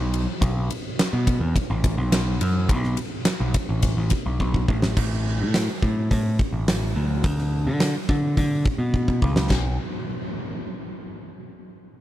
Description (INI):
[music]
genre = classic rock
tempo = 106 BPM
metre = 4/4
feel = straight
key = B minor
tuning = A4 = 437 Hz
[part]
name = growling picked electric bass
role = bass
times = 0.0-9.8 s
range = A1 to D3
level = -23 LUFS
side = equal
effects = overdrive
[part]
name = huge arena drum kit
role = drums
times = 0.1-9.6 s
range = china cymbal, crash cymbal, hi-hat, kick drum, ride cymbal, snare drum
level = -24 LUFS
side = equal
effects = none
[sound]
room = little or no reverb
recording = none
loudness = -20 LUFS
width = side -14 dB against mid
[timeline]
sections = 0.0-5.0 A section; 5.0-9.5 B section; 9.5-11.8 C section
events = drum fill 4.4-5.0, 8.9-9.5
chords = none